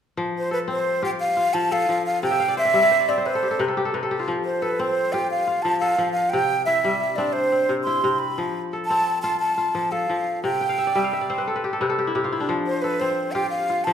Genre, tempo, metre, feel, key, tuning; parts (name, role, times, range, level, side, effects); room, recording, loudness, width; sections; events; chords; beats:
west african traditional; 117 BPM (dotted quarters); 12/8; straight; F lydian; A4 = 439 Hz
kora; arpeggios; 0.2-13.9 s; C3 to G5; -25 LUFS; left 2 dB
breathy mellow silver concert flute; melody; 0.4-13.9 s; B4 to C6; -21 LUFS; right 1 dB
wet recital hall reverb, RT60 1.4 s; minimal, uncompressed stereo recording; -20 LUFS; side -8 dB against mid
0.2-13.9 A section
kora fill 2.3-4.3, 10.6-12.5
0.2 F; 2.2 C; 4.3 F; 6.3 C; 8.4 F; 10.4 C5; 12.5 F
| 0.19 0.70 1.21 1.72 | 2.23 2.74 3.25 3.77 | 4.28 4.79 5.30 5.82 | 6.33 6.84 7.35 7.87 | 8.38 8.89 9.41 9.92 | 10.44 10.95 11.47 11.98 | 12.50 13.01 13.53